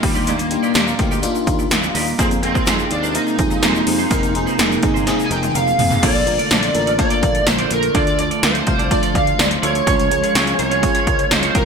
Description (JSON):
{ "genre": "1980s-style pop", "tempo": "125 BPM", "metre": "4/4", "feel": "straight", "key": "unclear", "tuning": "A4 = 440 Hz", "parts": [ { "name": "lead guitar through a small cranked amp", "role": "melody", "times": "0.0-11.7 s", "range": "G3 to Ab5", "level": "-20 LUFS", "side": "right 2 dB", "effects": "overdrive, analog chorus, ping-pong delay" }, { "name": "FM electric piano with soft pad layer", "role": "accompaniment", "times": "0.0-11.7 s", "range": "Ab3 to F5", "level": "-23 LUFS", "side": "left 3 dB", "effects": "chorus" }, { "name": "phased analog pad", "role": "sustained chords", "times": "0.0-11.7 s", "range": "Bb2 to F4", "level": "-26 LUFS", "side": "equal", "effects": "phaser, chorus" }, { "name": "twelve-string electric guitar", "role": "riff", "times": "0.0-11.6 s", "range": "Bb3 to D5", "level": "-26 LUFS", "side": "right 5 dB", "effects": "wide subtle chorus" }, { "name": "sustaining fretless electric bass", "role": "bass", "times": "0.0-11.7 s", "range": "F1 to F2", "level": "-25 LUFS", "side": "equal", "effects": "none" }, { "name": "80s electronic pad drums", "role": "drums", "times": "0.0-11.7 s", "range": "crash cymbal, hi-hat, kick drum, snare drum, tambourine, toms", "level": "-19 LUFS", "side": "equal", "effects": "gated reverb on snare and toms, overdrive, gated reverb" }, { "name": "tube shaker", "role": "percussion", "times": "0.2-6.0 s", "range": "none", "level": "-34 LUFS", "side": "left 9 dB", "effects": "none" } ], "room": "moderate plate reverb, RT60 1.4 s, digital ambience", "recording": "bright 1980s-style digital production", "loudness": "-14 LUFS", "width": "side -6 dB against mid", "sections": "0.0-6.0 A section; 6.0-11.7 B section", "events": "drum fill 5.1-6.0", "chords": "0.0 Ebmaj7; 2.2 Bb9sus4; 6.0 Bbmaj7; 7.9 Dm; 9.9 Db", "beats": "| 0.27 0.75 1.23 1.71 | 2.19 2.67 3.15 3.63 | 4.11 4.59 5.07 5.55 | 6.03 6.51 6.99 7.47 | 7.95 8.43 8.91 9.39 | 9.87 10.35 10.83 11.31" }